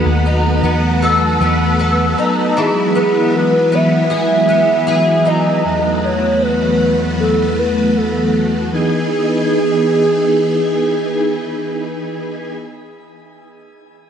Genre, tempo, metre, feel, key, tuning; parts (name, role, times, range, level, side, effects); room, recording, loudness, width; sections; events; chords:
dream pop; 78 BPM; 4/4; straight; E major; A4 = 436 Hz
ensemble organ-string; sustained chords; 0.0-12.6 s; E2 to G#4; -16 LUFS; equal; ensemble chorus, shimmer reverb
fingerpicked twelve-string acoustic guitar; arpeggios; 0.0-6.2 s; E3 to A4; -19 LUFS; left 2 dB; ensemble chorus, digital delay, shimmer reverb
vintage muted picked electric bass; bass; 0.0-2.1 s; D#2 to E2; -16 LUFS; equal
hollow clarinet-like synth lead; melody; 2.6-12.6 s; G#4 to E5; -16 LUFS; right 1 dB; chorus, digital delay, shimmer reverb
moderate plate reverb, RT60 2.9 s; nothing above 10.4 kHz; -13 LUFS; side -8 dB against mid
0.0-8.7 A section; 8.7-11.8 B section
0.0 B7; 2.6 Emaj7; 5.6 B5/E; 8.7 Emaj7